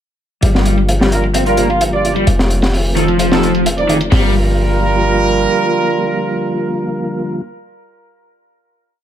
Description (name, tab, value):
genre	breakbeat, breaks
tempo	130 BPM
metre	4/4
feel	straight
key	G minor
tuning	A4 = 441 Hz
part	mellow tonewheel organ	sustained chords	0.4-7.4 s	D3 to F4	-20 LUFS	left 1 dB	chorus vibrato, fast rotary speaker, sidechain pumping
part	overdriven semi-hollow guitar	riff	0.4-4.3 s	Eb3 to F4	-18 LUFS	left 1 dB	low-pass filter, dub echo
part	warm 808-style bass	bass	0.4-5.5 s	F1 to G1	-16 LUFS	equal	none
part	crunchy breakbeat drum kit	drums	0.4-4.2 s	hi-hat, kick drum, snare drum	-18 LUFS	equal	none
part	electronic hi-hat	drums	0.4-4.1 s	none	-31 LUFS	right 1 dB	none
part	warm horn section	stabs	1.1-7.4 s	F3 to D5	-18 LUFS	right 4 dB	low-pass filter, dub echo
room	moderate studio reverb, RT60 0.6 s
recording	none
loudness	-12 LUFS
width	side -10 dB against mid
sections	0.4-4.1 breakdown; 4.1-7.8 final chord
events	none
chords	0.4 Gm7; 2.3 F7; 4.1 Gm7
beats	| 0.43 0.89 1.35 1.81 | 2.27 2.73 3.20 3.66 | 4.12 4.58 5.04 5.50 | 5.97 6.43 6.89 7.35